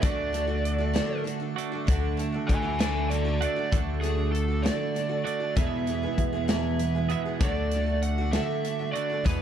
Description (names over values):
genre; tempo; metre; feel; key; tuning
folk rock and heartland rock; 65 BPM (dotted quarters); 6/8; straight; unclear; A4 = 440 Hz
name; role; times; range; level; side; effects
lead guitar through a small cranked amp; melody; 0.0-9.4 s; G#4 to G#5; -31 LUFS; right 3 dB; overdrive
picked twelve-string acoustic guitar; accompaniment; 0.0-9.4 s; E2 to G#4; -33 LUFS; left 5 dB; none
twelve-string electric guitar; riff; 0.0-9.4 s; E2 to G#4; -32 LUFS; right 11 dB; none
upright bass; bass; 0.0-9.4 s; D2 to E2; -29 LUFS; left 1 dB; none
natural country drum kit; drums; 0.0-9.4 s; hi-hat, kick drum, snare drum; -28 LUFS; left 1 dB; none
room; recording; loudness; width
light reverb; dark, warm production; -24 LUFS; side -9 dB against mid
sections
0.0-3.7 A section; 3.7-9.4 B section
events
lead electric guitar solo 0.0-3.7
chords
0.0 D; 5.6 E; 7.4 D